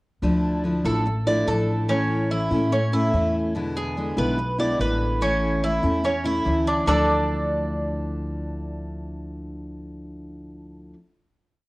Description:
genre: latin.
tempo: 144 BPM.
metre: 4/4.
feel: straight.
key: D harmonic minor.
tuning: A4 = 441 Hz.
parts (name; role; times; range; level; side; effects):
picked steel-string acoustic guitar; accompaniment; 0.2-11.0 s; B2 to E4; -26 LUFS; left 1 dB; cassette tape.
upright bass; bass; 0.2-10.9 s; A1 to A2; -27 LUFS; equal; none.
Cuban tres; arpeggios; 0.9-10.9 s; C#4 to D5; -24 LUFS; right 1 dB; cassette tape.
room: wet spring reverb, RT60 1.3 s, small room reverb.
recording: home recording on cassette.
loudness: -21 LUFS.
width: side -21 dB against mid.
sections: 0.2-6.9 verse; 6.9-10.2 final chord.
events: none.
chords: 0.2 Dmadd9; 1.9 A; 3.6 E7; 5.2 A; 6.9 Dmadd9.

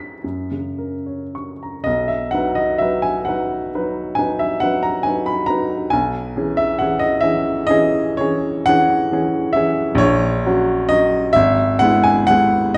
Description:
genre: classical, romantic nocturne for solo piano.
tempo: 35-47 BPM (dotted quarters).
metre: 9/8.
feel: rubato.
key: B major.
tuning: A4 = 440 Hz.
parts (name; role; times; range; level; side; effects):
warm baby grand piano; solo; 0.0-12.8 s; G#1 to B6; -18 LUFS; equal; none.
room: wet recital hall reverb, RT60 1.6 s.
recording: dark, warm production.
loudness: -18 LUFS.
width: mono.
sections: 0.0-1.9 A section; 1.9-12.8 B section.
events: none.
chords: 0.2 F#; 1.9 B; 5.9 C#m7/B; 10.0 F#/A#; 11.3 E/G#.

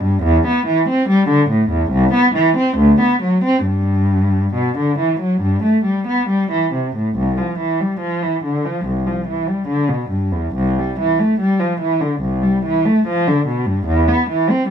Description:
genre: classical, baroque-style suite movement for unaccompanied cello.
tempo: 70 BPM.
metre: 4/4.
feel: uneven beats, rubato.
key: G major, C major from 7.2 s.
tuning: A4 = 438 Hz.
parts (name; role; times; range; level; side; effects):
dark cello; solo; 0.0-14.7 s; C2 to C4; -14 LUFS; equal; none.
room: light reverb.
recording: close, detailed microphones.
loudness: -14 LUFS.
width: side -8 dB against mid.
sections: 0.0-7.2 A section; 7.2-14.7 A section.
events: none.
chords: none.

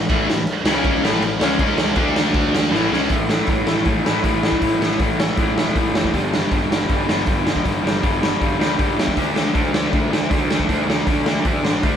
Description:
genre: punk rock.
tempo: 158 BPM.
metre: 4/4.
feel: straight.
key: A major.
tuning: A4 = 440 Hz.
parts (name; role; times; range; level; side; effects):
heavy high-gain guitar; riff; 0.0-3.1 s; A2 to D4; -24 LUFS; equal; distortion.
raw garage guitar; riff; 0.0-12.0 s; G2 to D4; -20 LUFS; left 1 dB; overdrive.
fuzz picked electric bass; bass; 0.0-12.0 s; E1 to E2; -26 LUFS; equal; overdrive.
raw garage drum kit; drums; 0.1-11.9 s; crash cymbal, hi-hat, kick drum, snare drum; -20 LUFS; equal; none.
room: light reverb.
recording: band playing live in one room.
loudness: -16 LUFS.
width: side -8 dB against mid.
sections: 0.0-3.1 A section; 3.1-12.0 B section.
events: drum fill 2.7-3.1.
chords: 0.0 A5; 0.6 C#5; 1.0 A; 1.6 C#5; 2.0 D5; 2.7 A; 3.1 A5; 6.1 G5; 9.2 D5.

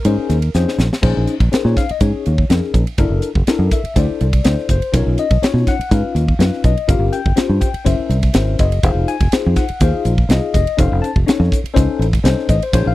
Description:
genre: electric jazz fusion.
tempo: 123 BPM.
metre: 4/4.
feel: straight.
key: Bb minor.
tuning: A4 = 439 Hz.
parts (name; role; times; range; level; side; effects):
clear concert grand piano; melody; 0.0-0.5 s; Bb4; -47 LUFS; right 1 dB; none.
breathy concert flute; second line; 0.0-0.5 s; Bb4; -32 LUFS; right 6 dB; none.
crisp fusion drum kit; drums; 0.0-12.9 s; crash cymbal, hi-hat, kick drum, ride cymbal, snare drum; -17 LUFS; equal; none.
tine electric piano; accompaniment; 0.1-12.9 s; Db4 to A5; -20 LUFS; left 6 dB; phaser.
fingered electric bass; bass; 0.1-12.9 s; F1 to B2; -16 LUFS; equal; none.
room: little or no reverb.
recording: dry, close 1970s-style studio recording.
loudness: -13 LUFS.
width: side -16 dB against mid.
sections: 0.0-1.0 A section; 1.0-12.9 B section.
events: drum fill 0.6-1.0.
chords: 0.0 Bbm11; 3.0 Gb7alt; 4.9 Bmaj9#11; 6.9 Gm7b5; 7.9 Gb7#11; 8.8 Fm7; 10.8 F7b13.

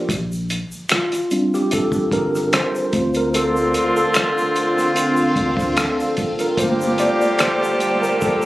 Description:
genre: R&B, neo-soul.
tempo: 74 BPM.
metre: 4/4.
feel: swing 54% on 16ths.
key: unclear.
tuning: A4 = 439 Hz.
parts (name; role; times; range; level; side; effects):
mellow tine electric piano; accompaniment; 0.0-8.5 s; G3 to D5; -19 LUFS; equal; fast stereo tremolo.
warm sub bass; bass; 0.1-8.5 s; F1 to D2; -28 LUFS; equal; none.
cloth-damped thuddy drum kit; drums; 0.1-8.4 s; hi-hat, kick drum, rim click; -22 LUFS; equal; none.
tube shaker and finger snaps; percussion; 0.1-8.5 s; none; -28 LUFS; equal; none.
phased string machine; sustained chords; 3.3-8.5 s; D3 to A4; -23 LUFS; equal; ensemble chorus, phaser.
clear horn section; stabs; 3.3-8.5 s; D3 to G4; -21 LUFS; equal; none.
room: light reverb.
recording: recorded on a phone in the room, club reverb, compression.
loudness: -16 LUFS.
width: side -16 dB against mid.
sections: 0.0-8.5 A section.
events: tine electric piano solo 0.0-8.5; drum fill 8.2.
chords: 0.1 Bb6; 2.9 Dm7; 6.6 Gm9.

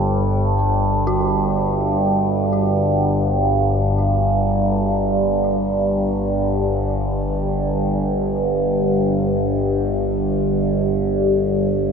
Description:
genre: dark ambient drone.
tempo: free time.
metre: none.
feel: none.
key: unclear.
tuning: A4 = 439 Hz.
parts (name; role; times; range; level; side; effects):
dark detuned synth bell; arpeggios; 0.0-11.9 s; D4 to F#4; -31 LUFS; equal; chorus, phaser, ping-pong delay, shimmer reverb.
overtone-sweeping drone; drone; 0.0-11.9 s; G1 to G2; -17 LUFS; equal; chorus, built-in reverb, phaser.
room: wet huge ambient reverb, RT60 7.8 s.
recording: none.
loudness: -17 LUFS.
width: side -6 dB against mid.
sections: 0.0-11.9 A section.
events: none.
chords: 0.0 G5.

